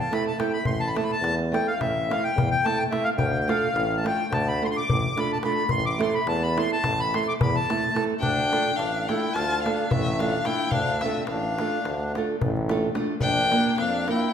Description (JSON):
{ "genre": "balkan folk, Balkan wedding band", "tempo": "215 BPM (eighths)", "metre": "9/8", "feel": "straight", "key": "A minor, D minor from 8.2 s", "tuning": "A4 = 440 Hz", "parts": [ { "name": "accordion", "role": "second line", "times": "0.0-14.3 s", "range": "A3 to D6", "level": "-27 LUFS", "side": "left 2 dB", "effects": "none" }, { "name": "nylon-string guitar", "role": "accompaniment", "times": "0.1-14.3 s", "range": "A3 to Bb4", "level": "-28 LUFS", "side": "right 3 dB", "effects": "none" }, { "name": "darbuka", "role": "percussion", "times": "0.1-14.3 s", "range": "none", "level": "-30 LUFS", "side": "left 2 dB", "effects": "none" }, { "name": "warm tuba", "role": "bass", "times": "0.6-14.1 s", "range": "A1 to F2", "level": "-30 LUFS", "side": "equal", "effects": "none" }, { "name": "warm violin", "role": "melody", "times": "8.2-14.3 s", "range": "E5 to A5", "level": "-26 LUFS", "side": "left 3 dB", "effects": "none" } ], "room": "wet recital hall reverb, RT60 1.5 s", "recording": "recorded in a church or concert hall", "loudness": "-22 LUFS", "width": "side -8 dB against mid", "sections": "0.0-8.2 A section; 8.2-14.3 B section", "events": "accordion solo 0.0-8.2", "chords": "0.0 Am; 3.2 Dm; 5.7 Am; 8.2 Dm; 13.2 Bb", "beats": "0.08 0.36 | 0.64 0.93 1.21 1.49 1.77 2.05 2.33 2.61 2.89 | 3.17 3.45 3.73 4.01 4.29 4.57 4.85 5.13 5.41 | 5.69 5.97 6.25 6.53 6.81 7.09 7.37 7.65 7.92 | 8.20 8.48 8.76 9.04 9.32 9.60 9.88 10.15 10.43 | 10.71 10.99 11.27 11.55 11.82 12.10 12.38 12.66 12.94 | 13.21 13.49 13.77 14.04 14.32" }